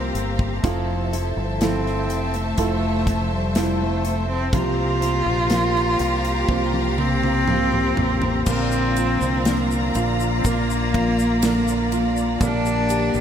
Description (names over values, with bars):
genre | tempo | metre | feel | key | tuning
pop ballad | 61 BPM | 4/4 | straight | unclear | A4 = 440 Hz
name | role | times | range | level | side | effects
rich cello | melody | 0.0-13.2 s | G3 to F4 | -24 LUFS | left 1 dB | none
warm baby grand piano | accompaniment | 0.0-13.2 s | C3 to C5 | -26 LUFS | right 6 dB | none
clear studio string section | sustained chords | 0.0-13.2 s | F3 to Bb5 | -28 LUFS | left 1 dB | none
picked steel-string acoustic guitar | arpeggios | 0.0-13.2 s | Bb2 to Bb4 | -29 LUFS | left 5 dB | wide subtle chorus, tape echo
fingered electric bass | bass | 0.0-13.2 s | F1 to C2 | -25 LUFS | equal | none
modern studio drum kit | drums | 0.2-13.1 s | crash cymbal, hi-hat, kick drum, ride cymbal, snare drum, toms | -26 LUFS | equal | none
tube shaker | percussion | 8.5-13.2 s | none | -37 LUFS | left 11 dB | none
room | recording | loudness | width
moderate huge ambient reverb, RT60 4.3 s | dreamy mix soaked in reverb | -18 LUFS | side -9 dB against mid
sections
0.0-8.5 A section; 8.5-13.2 B section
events
drum fill 6.5-8.5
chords
0.0 C7sus4; 0.6 Fmaj7; 4.5 C7sus4; 8.5 Bb; 12.4 Gmadd9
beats
| 0.64 1.62 2.59 3.56 | 4.53 5.51 6.49 7.48 | 8.47 9.46 10.45 11.43 | 12.41